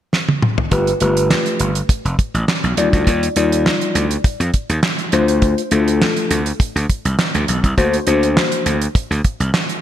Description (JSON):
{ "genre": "early-eighties boogie funk", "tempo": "102 BPM", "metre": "4/4", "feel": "straight", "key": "D dorian", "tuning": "A4 = 439 Hz", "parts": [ { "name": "damped 70s drum kit", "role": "drums", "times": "0.1-9.8 s", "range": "handclaps, hi-hat, kick drum, snare drum, toms", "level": "-18 LUFS", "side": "right 1 dB", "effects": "gated reverb" }, { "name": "mellow tine electric piano", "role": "accompaniment", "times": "0.7-8.8 s", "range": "G3 to D5", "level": "-18 LUFS", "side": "left 3 dB", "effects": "none" }, { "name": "gritty slap bass", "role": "bass", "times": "0.7-9.5 s", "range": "F1 to F2", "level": "-18 LUFS", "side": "equal", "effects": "overdrive" } ], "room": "moderate lush hall reverb, RT60 1.7 s, small room ambience", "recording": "bright 1980s-style digital production", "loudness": "-14 LUFS", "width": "side -11 dB against mid", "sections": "0.7-9.8 A section", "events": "drum fill 0.1-0.7", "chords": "0.0 N.C.; 0.7 G9; 2.8 Ebmaj9; 5.1 Dm7; 7.8 D7b13" }